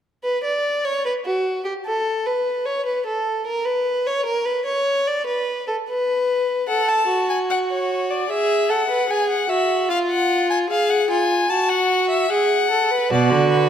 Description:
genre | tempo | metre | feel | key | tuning
classical, baroque-style fugue for string quartet | 75 BPM | 4/4 | straight | unclear | A4 = 440 Hz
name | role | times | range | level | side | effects
rich violin | second line | 0.2-13.7 s | F4 to D5 | -20 LUFS | right 1 dB | none
rich violin | melody | 6.7-13.7 s | B4 to A5 | -21 LUFS | left 5 dB | none
rich cello | bass | 13.1-13.7 s | B2 to D3 | -17 LUFS | right 5 dB | none
room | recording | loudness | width
wet recital hall reverb, RT60 1.6 s | none | -18 LUFS | side -9 dB against mid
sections
0.2-13.7 A section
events
none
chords
0.2 N.C.; 6.7 F#m; 8.3 E/G#; 9.9 Fm; 11.5 F#m; 13.1 Bm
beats
| 0.23 1.05 1.85 2.66 | 3.46 4.27 5.08 5.88 | 6.69 7.49 8.29 9.09 | 9.90 10.70 11.50 12.31 | 13.11

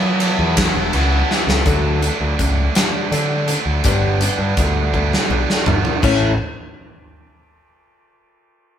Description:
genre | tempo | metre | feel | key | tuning
quiet-loud alternative rock | 55 BPM (dotted quarters) | 6/8 | straight | A mixolydian | A4 = 440 Hz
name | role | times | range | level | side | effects
dark cello | melody | 0.0-0.9 s | F#3 | -22 LUFS | right 2 dB | none
distorted electric guitar | riff | 0.0-1.7 s | E3 to E4 | -24 LUFS | left 7 dB | overdrive
distorted electric guitar | riff | 0.0-6.3 s | G2 to E4 | -22 LUFS | right 5 dB | distortion
big rock drum kit | drums | 0.2-6.2 s | crash cymbal, hi-hat, kick drum, ride cymbal, snare drum, toms | -20 LUFS | equal | none
growling picked electric bass | bass | 0.4-6.4 s | E1 to D3 | -19 LUFS | equal | overdrive
picked old ladder-braced acoustic guitar | arpeggios | 1.7-6.3 s | A2 to A4 | -23 LUFS | left 5 dB | none
room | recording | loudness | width
moderate large studio reverb, RT60 0.9 s | band playing live in one room | -15 LUFS | side -9 dB against mid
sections
0.0-1.7 A section; 1.7-6.0 B section; 6.0-8.2 C section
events
drum fill 1.3-1.7, 4.9-6.0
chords
0.0 Esus2; 1.7 D; 3.8 G; 6.0 A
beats
0.57 | 1.66 2.75 | 3.84 4.93 | 6.03

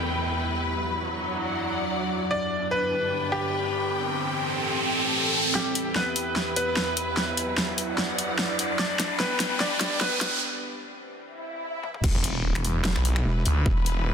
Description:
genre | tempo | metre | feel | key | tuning
heavy wobble dubstep | 148 BPM | 4/4 | swing 54% on 16ths, half-time | E minor | A4 = 440 Hz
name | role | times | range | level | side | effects
evolving wavetable pad | sustained chords | 0.0-12.0 s | E2 to G4 | -33 LUFS | right 1 dB | chorus, built-in reverb, sidechain pumping
downlifter, riser, swell and impact | sound effects | 0.0-13.7 s | none | -31 LUFS | equal | none
clear studio string section | texture | 0.0-14.1 s | F#3 to G5 | -31 LUFS | left 1 dB | sidechain pumping
bright concert grand piano | melody | 2.3-10.4 s | G3 to D5 | -29 LUFS | equal | tape echo
dubstep drum kit | drums | 5.5-13.9 s | crash cymbal, finger snaps, hi-hat, snare drum, toms | -28 LUFS | equal | none
wobble bass | bass | 12.0-13.8 s | E1 | -27 LUFS | equal | chorus, overdrive
electronic kick drum | drums | 12.0-13.7 s | none | -24 LUFS | equal | none
snarling distorted saw bass | bass | 12.1-14.1 s | E1 to D2 | -24 LUFS | equal | distortion, overdrive
room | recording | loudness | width
moderate lush hall reverb, RT60 2.1 s | dense, heavily limited modern master, high-pass filter | -23 LUFS | side -7 dB against mid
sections
0.0-5.6 A section; 5.6-12.0 B section; 12.0-14.1 C section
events
filter sweep on ambient pad 0.0-5.6; riser 3.1-5.6, 5.6-10.4; build-up 5.6-12.0; drum fill 5.6-10.4, 11.8; break 10.4-12.0; swell 11.3-12.0; drop 12.0-14.1; impact 12.0-13.7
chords
0.0 Em; 0.7 Dadd9/F#; 2.3 G; 3.9 Am7; 5.6 Em; 7.2 Dadd9/F#; 8.8 G; 10.4 Am7; 12.0 E5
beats
0.28 | 0.69 1.09 1.50 1.90 | 2.31 2.71 3.12 3.52 | 3.93 4.33 4.74 5.14 | 5.55 5.96 6.36 6.77 | 7.17 7.58 7.98 8.39 | 8.79 9.20 9.61 10.01 | 10.42 10.82 11.23 11.63 | 12.04 12.44 12.85 13.25 | 13.66 14.06

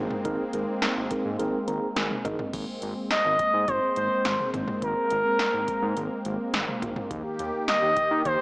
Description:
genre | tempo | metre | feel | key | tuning
synth-pop | 105 BPM | 4/4 | straight | Ab major | A4 = 440 Hz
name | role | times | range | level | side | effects
mellow tine electric piano | accompaniment | 0.0-2.5 s | C4 to Bb5 | -30 LUFS | right 1 dB | medium stereo tremolo
brassy analog pad | sustained chords | 0.0-8.4 s | Eb3 to G4 | -31 LUFS | equal | chorus
smooth synth bass | bass | 0.0-8.4 s | Ab1 to Eb3 | -33 LUFS | equal | none
electro analog drum machine | drums | 0.1-8.4 s | crash cymbal, hi-hat, kick drum, snare drum, toms | -30 LUFS | equal | none
expressive portamento lead | melody | 3.1-8.4 s | Bb4 to Eb5 | -24 LUFS | equal | chorus, digital delay
room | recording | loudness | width
moderate plate reverb, RT60 2.2 s | small speaker sound | -24 LUFS | side -25 dB against mid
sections
0.0-2.5 A section; 2.5-8.4 B section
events
tine electric piano fill 1.4-2.5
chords
0.0 Abadd9; 7.1 Eb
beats
| 0.25 0.82 1.39 1.97 | 2.54 3.11 3.68 4.25 | 4.82 5.39 5.96 6.54 | 7.11 7.68 8.25

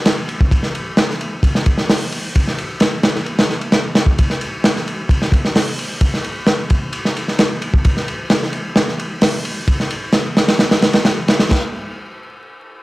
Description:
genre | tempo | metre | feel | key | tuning
breakbeat | 131 BPM | 4/4 | straight | none | none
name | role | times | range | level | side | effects
crunchy breakbeat drum kit | drums | 0.1-11.6 s | crash cymbal, hi-hat, kick drum, ride cymbal, snare drum | -14 LUFS | equal | none
room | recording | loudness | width
little or no reverb | vinyl crackle | -14 LUFS | side -19 dB against mid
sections
0.0-11.5 A section; 11.5-12.8 B section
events
drop 0.0-11.5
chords
none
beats
0.06 | 0.52 0.98 1.44 1.89 | 2.35 2.81 3.27 3.73 | 4.18 4.64 5.10 5.56 | 6.02 6.47 6.93 7.39 | 7.85 8.31 8.76 9.22 | 9.68 10.14 10.60 11.05 | 11.51

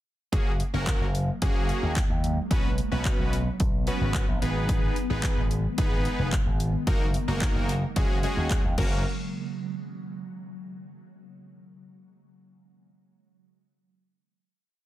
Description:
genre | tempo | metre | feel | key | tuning
dance-pop | 110 BPM | 4/4 | straight | F# major | A4 = 440 Hz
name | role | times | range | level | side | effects
big bright polysynth | accompaniment | 0.3-9.0 s | G#3 to B4 | -31 LUFS | equal | sidechain pumping
ethereal airy pad | sustained chords | 1.1-9.0 s | C#3 to B3 | -36 LUFS | right 1 dB | ensemble chorus, built-in reverb, phaser, sidechain pumping
slap bass with an envelope filter | bass | 0.3-9.0 s | E#1 to D#2 | -28 LUFS | equal | sidechain pumping
house drum kit | drums | 0.3-8.9 s | crash cymbal, handclaps, hi-hat, kick drum | -26 LUFS | equal | none
room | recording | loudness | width
digital ambience | dense, heavily limited modern master | -24 LUFS | side -14 dB against mid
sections
0.3-9.1 chorus; 9.1-11.2 final hit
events
none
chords
0.3 F#add9; 2.5 Bsus2; 4.4 G#m; 6.9 D#m/F#; 8.0 F#sus2; 8.8 F#; 9.1 N.C.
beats
| 0.33 0.87 1.42 1.96 | 2.51 3.05 3.60 4.14 | 4.69 5.24 5.78 6.33 | 6.87 7.42 7.96 8.51

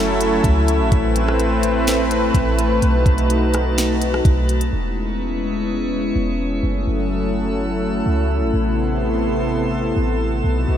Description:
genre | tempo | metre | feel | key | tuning
hip hop, atmospheric cloud-rap | 126 BPM | 4/4 | half-time | E major | A4 = 445 Hz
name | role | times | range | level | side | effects
warm analog pad | sustained chords | 0.0-10.8 s | C3 to B4 | -19 LUFS | left 1 dB | chorus, sidechain pumping, low-pass filter
clean 808-style bass | bass | 0.0-10.8 s | E1 to C#2 | -21 LUFS | equal | none
drifting glass-harmonics texture | texture | 0.0-10.8 s | B3 to E6 | -30 LUFS | right 2 dB | chorus, built-in reverb
trap drum kit | drums | 0.2-4.7 s | hi-hat, kick drum, rim click, snare drum | -23 LUFS | equal | none
room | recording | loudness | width
moderate huge ambient reverb, RT60 6.8 s | dreamy mix soaked in reverb | -16 LUFS | side -10 dB against mid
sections
0.0-4.7 A section; 4.7-10.8 B section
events
filter sweep on analog synth pad 4.7-10.8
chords
0.0 F#m7; 0.9 Amadd9; 2.8 B7; 4.7 E6; 6.6 F#m7; 8.5 Amadd9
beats
0.44 | 0.92 1.40 1.87 2.35 | 2.82 3.30 3.78 4.25 | 4.73 5.21 5.68 6.16 | 6.63 7.11 7.59 8.06 | 8.54 9.02 9.49 9.97 | 10.44

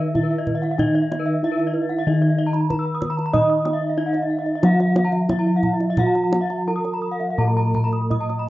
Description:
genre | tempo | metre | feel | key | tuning
Balinese gamelan | 81-94 BPM | 4/4 | straight | Eb pelog | A4 = 440 Hz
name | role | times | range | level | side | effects
gamelan-type bronze metallophone | melody | 0.0-8.5 s | Eb4 to Eb5 | -26 LUFS | right 1 dB | none
gamelan-type bronze metallophone | accompaniment | 0.0-8.5 s | Eb3 to Eb4 | -31 LUFS | equal | none
gamelan-type bronze metallophone | arpeggios | 0.0-8.4 s | Cb5-40c to Fb6 | -31 LUFS | right 4 dB | tape echo
gamelan-type bossed gongs | bass | 0.0-8.5 s | Bb2-45c to Eb5 | -21 LUFS | equal | none
kendang | percussion | 0.0-8.4 s | none | -26 LUFS | right 1 dB | none
gamelan-type bronze metallophone | arpeggios | 0.2-8.5 s | Cb5-40c to Fb6 | -27 LUFS | left 2 dB | none
room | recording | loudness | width
moderate small room reverb, RT60 0.6 s | rough home demo mix, nothing above 7.6 kHz | -18 LUFS | side -16 dB against mid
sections
0.0-8.5 A section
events
none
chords
none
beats
0.15 | 0.79 1.42 2.06 2.69 | 3.33 3.97 4.63 5.29 | 5.97 6.67 7.38 8.11

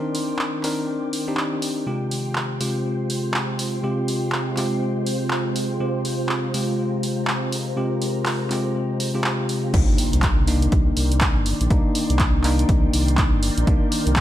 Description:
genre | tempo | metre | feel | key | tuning
deep house | 122 BPM | 4/4 | swing 61% on 16ths | C minor | A4 = 441 Hz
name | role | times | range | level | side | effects
soft string machine | sustained chords | 0.0-14.2 s | Eb3 to D6 | -30 LUFS | equal | phaser, ensemble chorus, sidechain pumping
bell-like tine electric piano | stabs | 0.0-14.2 s | C3 to Bb4 | -24 LUFS | left 1 dB | vintage 12-bit sampler grit, sidechain pumping, low-pass filter, ping-pong delay
warbly tape-like pad | texture | 0.0-9.7 s | Eb3 to C6 | -33 LUFS | right 2 dB | chorus, built-in reverb, sidechain pumping
punchy analog drum machine | drums | 0.1-14.2 s | crash cymbal, handclaps, hi-hat | -26 LUFS | right 1 dB | none
round analog bass | bass | 9.7-14.2 s | G1 to C2 | -21 LUFS | equal | sidechain pumping
electronic kick drum | drums | 9.7-14.2 s | none | -20 LUFS | equal | overdrive
impact | sound effects | 9.7-11.7 s | none | -26 LUFS | equal | none
room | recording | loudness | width
light reverb, digital ambience | none | -19 LUFS | side -12 dB against mid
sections
0.0-9.7 A section; 9.7-14.2 B section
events
drop 9.7-14.2; impact 9.7-11.7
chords
0.0 Cm9; 1.9 Fmadd9/C; 9.7 Cm9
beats
0.39 0.89 1.38 | 1.87 2.36 2.85 3.34 | 3.84 4.33 4.82 5.31 | 5.80 6.29 6.79 7.28 | 7.77 8.26 8.75 9.25 | 9.74 10.23 10.72 11.21 | 11.71 12.20 12.69 13.18 | 13.67 14.16

